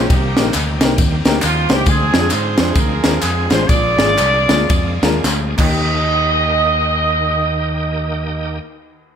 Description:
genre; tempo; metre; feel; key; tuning
uptempo gospel; 101-136 BPM; 4/4; swing 61% on 8ths; Eb major; A4 = 439 Hz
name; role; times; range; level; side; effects
clear horn section; melody; 0.0-8.6 s; Bb3 to Eb5; -18 LUFS; right 2 dB; none
warm upright piano; accompaniment; 0.0-8.6 s; Eb2 to C5; -23 LUFS; left 3 dB; none
bright tonewheel organ; sustained chords; 0.0-8.6 s; Eb3 to Ab4; -26 LUFS; right 2 dB; slow rotary speaker, chorus vibrato
fingered electric bass; bass; 0.0-8.6 s; Ab1 to Ab2; -20 LUFS; equal; none
crisp fusion drum kit; drums; 0.1-5.7 s; crash cymbal, kick drum, ride cymbal, snare drum; -17 LUFS; equal; none
tambourine and handclaps; percussion; 0.1-6.1 s; none; -25 LUFS; left 1 dB; none
room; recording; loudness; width
light reverb; none; -13 LUFS; side -8 dB against mid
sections
0.0-5.8 A section; 5.8-9.2 B section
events
slowing down 1.9-5.8; drum fill 5.2-5.8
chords
0.1 Cm7; 1.9 Dm7b5; 3.7 Bb7; 5.5 Eb

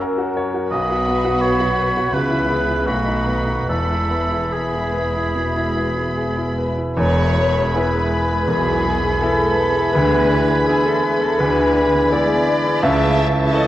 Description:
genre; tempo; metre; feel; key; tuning
classical, romantic movement for piano and orchestra; 70-87 BPM; 4/4; rubato; E major; A4 = 443 Hz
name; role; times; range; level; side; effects
clear baby grand piano; melody; 0.0-13.7 s; E1 to C#5; -21 LUFS; left 1 dB; none
warm symphonic violin section; melody; 0.0-13.7 s; A5 to B5; -30 LUFS; left 1 dB; none
warm symphonic violin section; second line; 0.0-13.7 s; D#4 to E5; -27 LUFS; left 1 dB; none
dark symphonic viola section; accompaniment; 0.0-13.7 s; E3 to E4; -28 LUFS; right 1 dB; none
mellow French horn section; sustained chords; 0.0-13.7 s; D#3 to B4; -27 LUFS; left 1 dB; none
warm oboe; second line; 0.7-13.7 s; F#4 to A5; -24 LUFS; right 1 dB; none
rich symphonic cello section; bass; 0.7-13.4 s; E2 to D3; -26 LUFS; right 1 dB; none
rich symphonic double bass section; bass; 0.7-13.4 s; E1 to D2; -26 LUFS; right 1 dB; none
concert flute; second line; 7.0-13.7 s; B5 to C#6; -26 LUFS; equal; none
warm clarinet; second line; 7.0-13.7 s; G#4 to E5; -23 LUFS; left 1 dB; none
warm bassoon; accompaniment; 7.0-13.7 s; E3; -27 LUFS; right 1 dB; none
room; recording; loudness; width
wet scoring stage reverb, RT60 1.7 s; worn, warbling old tape, cassette tape, warbly pitch drift; -16 LUFS; side -14 dB against mid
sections
0.0-7.0 A section; 7.0-13.7 A section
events
none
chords
0.0 F#; 0.7 B; 2.1 C#m7; 2.9 B7; 3.7 E; 9.9 E7/D; 12.8 A/C#

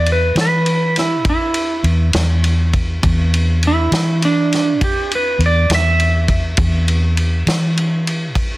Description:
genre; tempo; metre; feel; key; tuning
slow blues; 68 BPM (dotted quarters); 12/8; straight; unclear; A4 = 440 Hz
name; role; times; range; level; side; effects
clean lap steel guitar; melody; 0.0-7.4 s; D4 to E5; -17 LUFS; right 2 dB; none
vintage muted fingered electric bass; bass; 0.0-8.6 s; E2 to E3; -16 LUFS; equal; none
warm soul drum kit; drums; 0.1-8.5 s; kick drum, ride cymbal, snare drum; -20 LUFS; equal; none
room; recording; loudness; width
light reverb, small room ambience; dense, heavily limited modern master; -13 LUFS; side -18 dB against mid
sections
0.0-8.6 A section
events
electric slide guitar solo 0.0-8.6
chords
0.0 E5

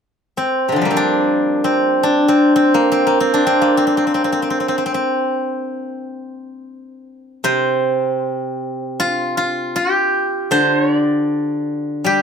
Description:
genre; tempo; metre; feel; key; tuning
chinese traditional; free time; none; none; C shang mode; A4 = 440 Hz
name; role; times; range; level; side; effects
steel-string zither; solo; 0.4-12.2 s; C3 to D5; -15 LUFS; equal; none
room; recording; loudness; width
moderate studio reverb, RT60 0.6 s; none; -15 LUFS; side -7 dB against mid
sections
0.0-7.5 A section; 7.5-12.2 B section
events
none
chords
none

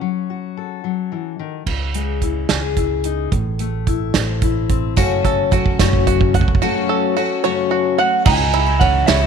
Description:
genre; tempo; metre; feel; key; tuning
indie folk with a building arrangement; 73 BPM (dotted quarters); 6/8; straight; unclear; A4 = 440 Hz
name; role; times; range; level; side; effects
fingerpicked steel-string acoustic guitar; accompaniment; 0.0-4.9 s; A2 to C5; -24 LUFS; left 12 dB; none
upright bass; bass; 1.7-9.3 s; F#1 to C#2; -21 LUFS; right 1 dB; none
natural country drum kit; drums; 1.7-9.2 s; crash cymbal, hi-hat, kick drum, ride cymbal, snare drum; -18 LUFS; right 4 dB; none
picked twelve-string acoustic guitar; accompaniment; 5.0-9.3 s; F#2 to F#4; -19 LUFS; left 12 dB; none
bluegrass banjo; arpeggios; 5.0-9.3 s; C#4 to F#5; -21 LUFS; right 12 dB; none
tambourine; percussion; 5.0-5.9 s; none; -33 LUFS; right 16 dB; none
electric guitar through a small old amp; melody; 8.0-9.3 s; E5 to G#5; -17 LUFS; right 3 dB; harmonic tremolo
room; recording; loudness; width
light reverb, studio ambience; 1960s-style stereo with parts hard left and right; -15 LUFS; side -6 dB against mid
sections
0.0-1.7 A section; 1.7-8.3 B section; 8.3-9.3 C section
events
build-up 1.7-8.3; drum fill 1.7-6.6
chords
0.0 F#m; 1.7 C#madd9; 3.3 Am; 5.0 F#m; 8.3 C#madd9

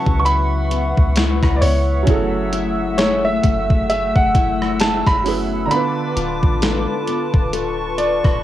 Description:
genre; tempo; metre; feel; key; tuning
contemporary R&B; 66 BPM; 4/4; swing 58% on 16ths; unclear; A4 = 440 Hz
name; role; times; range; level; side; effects
warm concert grand piano; melody; 0.0-8.4 s; C#5 to C#6; -21 LUFS; right 1 dB; analog delay
felt-muted upright piano; accompaniment; 0.0-8.4 s; C#3 to B4; -26 LUFS; right 8 dB; cassette tape
hollow soft pad; sustained chords; 0.0-8.4 s; A3 to E6; -24 LUFS; left 1 dB; chorus, cassette tape
nylon-string guitar; arpeggios; 0.0-8.4 s; C#3 to A4; -26 LUFS; left 9 dB; cassette tape, analog delay
soft 808-style bass; bass; 0.1-8.4 s; D1 to C#2; -22 LUFS; equal; none
clean 12-bit digital drum machine; drums; 0.1-8.4 s; hi-hat, kick drum, rim click, snare drum; -19 LUFS; equal; none
room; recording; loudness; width
light reverb; home recording on cassette; -15 LUFS; side -13 dB against mid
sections
0.0-8.4 A section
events
none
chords
0.0 A69/C# (rootless); 2.1 F#m9; 5.7 Dm6

